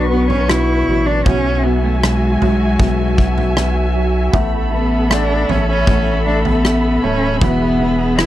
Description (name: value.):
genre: pop ballad.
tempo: 78 BPM.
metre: 4/4.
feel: straight.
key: A major.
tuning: A4 = 441 Hz.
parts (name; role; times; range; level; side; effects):
clear cello; melody; 0.0-8.3 s; G#3 to E4; -18 LUFS; equal; none.
clear concert grand piano; accompaniment; 0.0-8.3 s; B2 to A3; -23 LUFS; right 5 dB; none.
dark studio string section; sustained chords; 0.0-8.3 s; D4 to C#6; -22 LUFS; left 2 dB; none.
nylon-string guitar; arpeggios; 0.0-8.3 s; E2 to C#5; -25 LUFS; left 2 dB; none.
saturated sub bass; bass; 0.0-8.3 s; D1 to B1; -18 LUFS; equal; none.
huge arena drum kit; drums; 0.3-8.3 s; kick drum, rim click, toms; -19 LUFS; equal; none.
room: little or no reverb.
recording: dry, close 1970s-style studio recording.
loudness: -13 LUFS.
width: side -14 dB against mid.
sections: 0.0-8.3 A section.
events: none.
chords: 0.0 Bmadd9; 1.3 Eadd9/B; 4.3 Asus2; 7.4 E.